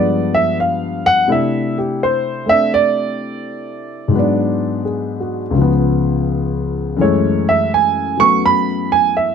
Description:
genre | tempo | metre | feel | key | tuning
solo jazz | 84 BPM | 4/4 | swing 67% on 8ths | unclear | A4 = 440 Hz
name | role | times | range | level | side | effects
dark baby grand piano | solo | 0.0-9.3 s | C#2 to C#6 | -14 LUFS | equal | none
room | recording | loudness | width
little or no reverb | close, detailed microphones | -14 LUFS | side -7 dB against mid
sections
0.0-9.3 A section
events
grand piano solo 0.0-9.3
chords
0.0 G7b9; 1.3 C69; 4.1 G#m7b5; 5.6 C#7; 7.0 F#m9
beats
0.56 | 1.28 1.99 2.70 3.42 | 4.13 4.84 5.56 6.27 | 6.99 7.70 8.41 9.13

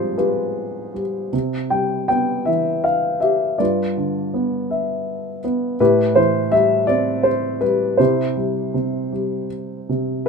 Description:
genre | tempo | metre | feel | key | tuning
classical, lyrical solo piano | 54 BPM (dotted quarters) | 6/8 | uneven beats, rubato | C major | A4 = 438 Hz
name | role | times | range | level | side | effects
dark baby grand piano | solo | 0.0-10.3 s | G2 to G5 | -18 LUFS | left 1 dB | none
room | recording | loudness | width
light reverb | minimal, uncompressed stereo recording | -17 LUFS | side -5 dB against mid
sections
0.0-10.3 A section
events
none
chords
0.0 Fmadd9/Ab; 1.3 Cmaj7; 3.6 G6; 5.8 Am7; 8.0 C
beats
0.18 | 1.33 2.48 | 3.60 4.71 | 5.80 6.88 | 7.99 9.12 | 10.28

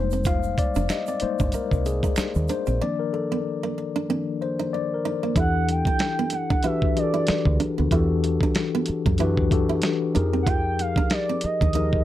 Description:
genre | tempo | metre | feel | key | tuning
R&B, neo-soul | 94 BPM | 4/4 | swing 56% on 16ths | unclear | A4 = 440 Hz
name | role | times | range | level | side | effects
nylon-string guitar | second line | 0.0-11.9 s | Bb3 to F4 | -30 LUFS | right 7 dB | none
mellow tine electric piano | accompaniment | 0.0-12.0 s | Eb3 to F5 | -25 LUFS | left 5 dB | slow stereo tremolo
deep dub fingered electric bass | bass | 0.0-12.0 s | F1 to F#2 | -24 LUFS | right 1 dB | none
tube shaker and finger snaps | percussion | 0.1-2.8 s | none | -40 LUFS | right 16 dB | none
dusty soul sampler-style drum kit | drums | 0.3-12.0 s | hi-hat, kick drum, snare drum | -24 LUFS | right 1 dB | none
gliding portamento lead | melody | 5.4-12.0 s | D5 to G5 | -26 LUFS | right 3 dB | chorus, slapback echo
room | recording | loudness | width
light reverb | dark, warm production | -21 LUFS | side -13 dB against mid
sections
0.0-5.4 A section; 5.4-12.0 B section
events
tine electric piano solo 0.0-5.4; break 2.8-5.4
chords
0.0 Fm11; 2.8 Cm11; 5.4 Em11; 10.1 Fm11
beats
| 0.25 0.89 1.53 2.17 | 2.81 3.44 4.08 4.72 | 5.36 6.00 6.63 7.27 | 7.91 8.55 9.19 9.83 | 10.46 11.10 11.74

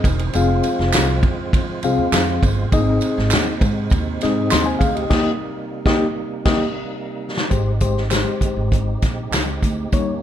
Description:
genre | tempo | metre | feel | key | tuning
uptempo 1960s-style soul | 100 BPM | 4/4 | straight | unclear | A4 = 441 Hz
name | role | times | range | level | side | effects
mellow reed electric piano | accompaniment | 0.0-10.1 s | G3 to C6 | -21 LUFS | left 3 dB | fast tremolo
tonewheel organ | sustained chords | 0.0-10.2 s | C3 to Ab4 | -29 LUFS | right 3 dB | slow rotary speaker, overdrive, chorus vibrato
upright bass | bass | 0.0-10.2 s | Fb1 to Ab2 | -22 LUFS | right 1 dB | none
swinging big-band drum kit | drums | 0.0-10.1 s | crash cymbal, hi-hat, kick drum, ride cymbal, snare drum | -20 LUFS | equal | none
tambourine and handclaps | percussion | 0.1-10.1 s | none | -29 LUFS | right 6 dB | none
room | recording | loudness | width
light reverb | dark, warm production | -16 LUFS | side -10 dB against mid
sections
0.0-7.5 A section; 7.5-10.2 B section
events
band accent 5.1-7.5; drum fill 6.3-7.5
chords
0.3 Fm; 2.7 Ab; 5.1 Eb; 7.5 Abmaj7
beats
| 0.34 0.93 1.53 2.13 | 2.72 3.32 3.92 4.51 | 5.11 5.71 6.31 6.91 | 7.51 8.11 8.72 9.32 | 9.93

